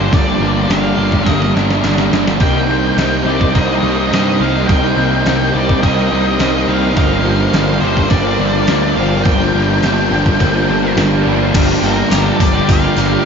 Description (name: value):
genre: rock, shoegaze and dream pop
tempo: 105 BPM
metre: 4/4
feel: straight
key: G minor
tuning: A4 = 441 Hz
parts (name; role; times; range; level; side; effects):
- octave-fuzz lead guitar; melody; 0.0-13.2 s; Bb4 to G5; -20 LUFS; left 1 dB; distortion, analog delay
- twelve-string electric guitar; arpeggios; 0.0-13.3 s; F3 to G4; -24 LUFS; left 8 dB; none
- overdriven semi-hollow guitar; riff; 0.0-13.3 s; G2 to Eb4; -18 LUFS; right 9 dB; reverse reverb
- thick fuzz guitar; riff; 0.0-13.3 s; G2 to C4; -19 LUFS; left 8 dB; distortion, analog chorus
- fuzz picked electric bass; bass; 0.0-13.2 s; G1 to G2; -19 LUFS; equal; overdrive
- detuned 8-bit digital drum machine; drums; 0.1-13.1 s; crash cymbal, hi-hat, kick drum, snare drum; -17 LUFS; equal; none
- string machine, full ensemble; sustained chords; 2.4-13.3 s; Eb4 to A5; -21 LUFS; equal; phaser, ensemble chorus
- tambourine; percussion; 11.5-13.1 s; none; -32 LUFS; right 15 dB; none
room: moderate huge ambient reverb, RT60 8.3 s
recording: dreamy mix soaked in reverb, nothing above 7.5 kHz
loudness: -11 LUFS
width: side -6 dB against mid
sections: 0.0-11.6 A section; 11.6-13.3 B section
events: drum fill 1.3-2.4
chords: 0.0 Gm7; 2.4 Cm7; 7.0 Gm7